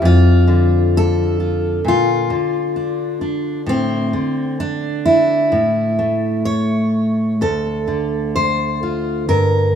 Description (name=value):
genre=folk, solo fingerstyle acoustic guitar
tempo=65 BPM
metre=4/4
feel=rubato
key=D minor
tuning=A4 = 440 Hz
part: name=fingerpicked steel-string acoustic guitar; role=solo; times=0.0-9.8 s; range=D2 to C#5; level=-15 LUFS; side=equal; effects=none
room=moderate lush hall reverb, RT60 2.8 s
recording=rough home demo mix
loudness=-15 LUFS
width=side -8 dB against mid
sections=0.0-9.8 A section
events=none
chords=0.0 Dm/F; 1.8 Bb; 3.7 Asus4; 5.5 N.C.; 7.4 Dm